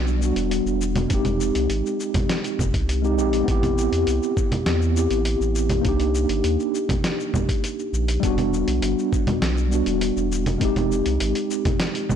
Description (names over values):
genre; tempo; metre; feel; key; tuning
sunset chillout; 101 BPM; 4/4; straight; unclear; A4 = 440 Hz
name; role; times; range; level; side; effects
mellow tine electric piano; accompaniment; 0.0-12.2 s; G3 to G4; -23 LUFS; equal; medium stereo tremolo, auto-pan, digital delay
warm sub bass; bass; 0.0-12.2 s; E1 to E2; -24 LUFS; equal; none
dusty soul sampler-style drum kit; drums; 0.1-12.2 s; congas, hi-hat, shaker, snare drum; -27 LUFS; right 1 dB; studio ambience
electronic kick drum; drums; 1.1-12.2 s; none; -24 LUFS; equal; studio ambience
room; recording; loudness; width
light reverb, digital ambience; blown-out, overdriven recording, overdrive; -20 LUFS; side -8 dB against mid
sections
0.0-12.2 A section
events
none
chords
0.0 Em9; 1.1 Fm9; 3.5 Am9; 5.9 Cm9; 8.2 Em9; 10.6 Fm9